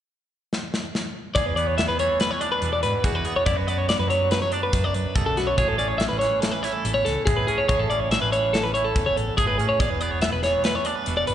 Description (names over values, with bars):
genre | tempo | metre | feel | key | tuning
math rock and midwest emo | 142 BPM | 5/4 | straight | A major | A4 = 441 Hz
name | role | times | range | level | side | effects
modern studio drum kit | drums | 0.5-11.3 s | hi-hat, kick drum, snare drum | -27 LUFS | equal | none
twelve-string electric guitar | arpeggios | 1.3-11.3 s | F#4 to E5 | -23 LUFS | left 2 dB | slapback echo
twangy electric guitar | accompaniment | 1.4-11.3 s | E2 to A4 | -28 LUFS | right 8 dB | slapback echo
hollow-body short-scale fingered electric bass | bass | 1.4-11.3 s | E1 to A2 | -28 LUFS | equal | none
room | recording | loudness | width
light reverb | live gig heard through the venue's PA, recital hall reverb, nothing above 10.6 kHz | -20 LUFS | side -10 dB against mid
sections
0.0-1.4 A section; 1.4-11.3 B section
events
drum fill 0.5-1.4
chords
0.0 N.C.; 1.4 E7; 3.5 D6/F#; 5.6 Amaj7; 9.8 E7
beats
0.09 0.51 0.93 | 1.35 1.78 2.20 2.62 3.04 | 3.47 3.89 4.31 4.73 5.16 | 5.58 6.00 6.42 6.85 7.27 | 7.69 8.11 8.54 8.96 9.38 | 9.80 10.23 10.65 11.07